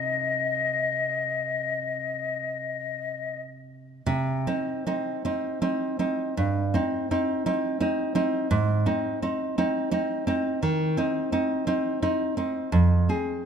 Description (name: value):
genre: romantic duo for flute and classical guitar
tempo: 46-58 BPM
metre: 4/4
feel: rubato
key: C minor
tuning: A4 = 444 Hz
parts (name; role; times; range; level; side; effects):
- silver concert flute; melody; 0.0-3.4 s; Eb5; -26 LUFS; left 5 dB; slapback echo
- nylon-string guitar; accompaniment; 0.0-13.4 s; F2 to Ab4; -25 LUFS; right 1 dB; none
room: moderate recital hall reverb, RT60 1.7 s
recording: none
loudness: -24 LUFS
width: side -7 dB against mid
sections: 0.0-4.1 A section; 4.1-13.5 B section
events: none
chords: 0.0 Cm; 8.5 Ab (rootless); 12.7 Fm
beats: 0.31 1.57 2.82 | 4.08 5.26 6.38 7.47 | 8.52 9.58 10.63 11.68 | 12.72